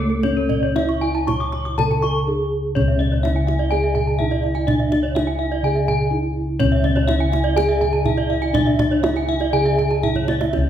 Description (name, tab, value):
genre	Balinese gamelan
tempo	123 BPM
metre	4/4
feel	straight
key	C# pelog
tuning	A4 = 440 Hz
part	gamelan-type bronze metallophone	melody	0.0-10.7 s	A3 to C#5	-22 LUFS	right 1 dB	none
part	gamelan-type bronze metallophone	arpeggios	0.0-10.7 s	G#4 to D6+35c	-25 LUFS	left 3 dB	none
part	gamelan-type bossed gongs	bass	0.0-10.7 s	C#2 to E4	-21 LUFS	equal	none
part	gamelan-type bronze metallophone	arpeggios	0.1-10.7 s	A4 to C#6	-28 LUFS	right 5 dB	none
part	kendang	percussion	0.2-10.7 s	none	-26 LUFS	right 2 dB	none
room	wet recital hall reverb, RT60 1.6 s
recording	heard from further back in the room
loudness	-17 LUFS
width	side -10 dB against mid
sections	0.0-2.8 A section; 2.8-10.5 B section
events	drum fill 2.1-2.8, 10.0-10.5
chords	none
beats	0.23 | 0.76 1.27 1.78 2.27 | 2.75 3.23 3.71 4.20 | 4.67 5.15 5.63 6.11 | 6.59 7.07 7.56 8.05 | 8.54 9.03 9.53 10.03 | 10.53